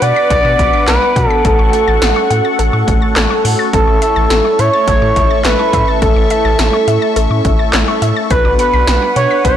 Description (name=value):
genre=synth-pop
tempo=105 BPM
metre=4/4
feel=straight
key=unclear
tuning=A4 = 439 Hz
part: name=expressive synth lead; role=melody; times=0.0-9.6 s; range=A4 to D5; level=-14 LUFS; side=right 2 dB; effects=chorus, tape echo
part: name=mellow synth brass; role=accompaniment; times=0.0-9.6 s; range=A3 to B4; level=-20 LUFS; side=equal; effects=chorus
part: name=phased analog pad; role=sustained chords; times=0.0-9.6 s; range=A4 to D6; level=-19 LUFS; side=left 2 dB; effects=phaser, chorus
part: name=wide unison pluck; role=arpeggios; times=0.0-9.6 s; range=A4 to B6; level=-22 LUFS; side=left 4 dB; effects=tape echo
part: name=round analog bass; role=bass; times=0.0-9.6 s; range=A1 to B2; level=-16 LUFS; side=equal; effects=none
part: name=80s electronic pad drums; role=drums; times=0.0-9.6 s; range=handclaps, hi-hat, kick drum, snare drum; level=-16 LUFS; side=equal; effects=none
room=light reverb, digital ambience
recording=blown-out, overdriven recording, overdrive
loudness=-10 LUFS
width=side -10 dB against mid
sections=0.0-9.6 A section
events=none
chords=0.0 Bm; 1.4 F#m/A; 3.7 A; 8.3 Bm